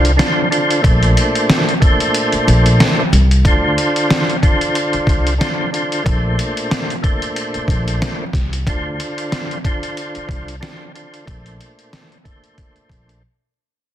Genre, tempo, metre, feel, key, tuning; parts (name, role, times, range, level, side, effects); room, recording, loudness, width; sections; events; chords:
hip hop, boom-bap hip-hop; 92 BPM; 4/4; swing 56% on 16ths; A4 = 440 Hz
percussive tonewheel organ; accompaniment; 0.0-13.2 s; Bb2 to C5; -18 LUFS; equal; overdrive, fast rotary speaker, cassette tape, high-pass filter, low-pass filter, plate reverb
upright bass; bass; 0.0-13.2 s; Bb1 to D2; -16 LUFS; equal
trip hop sampler-style drum kit; drums; 0.0-13.2 s; hi-hat, kick drum, snare drum; -18 LUFS; equal
light reverb; dense, heavily limited modern master, vinyl crackle; -13 LUFS; side -11 dB against mid
0.0-3.4 A section; 3.4-13.9 B section
kick muted 2.1-3.4; fade-out 3.4-13.9; break 13.2-13.9
0.0 Dm7; 0.8 Bbmaj9; 3.4 Dm7; 6.1 Bbmaj9; 8.7 Dm7; 11.3 Bbmaj9